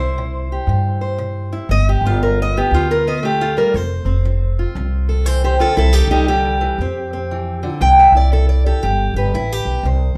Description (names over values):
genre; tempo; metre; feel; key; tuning
acoustic country blues, solo or duo; 118 BPM; 4/4; swing 64% on 8ths; C major; A4 = 440 Hz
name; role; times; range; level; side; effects
fingerpicked steel-string acoustic guitar; melody; 0.0-10.2 s; C3 to G5; -19 LUFS; equal; none
upright bass; bass; 0.0-10.2 s; F1 to G2; -20 LUFS; equal; none
room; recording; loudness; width
light reverb; band playing live in one room; -17 LUFS; mono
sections
0.0-9.8 A section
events
none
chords
0.0 C; 1.7 G; 3.7 F5; 5.8 C; 6.8 F5; 7.8 C; 8.8 G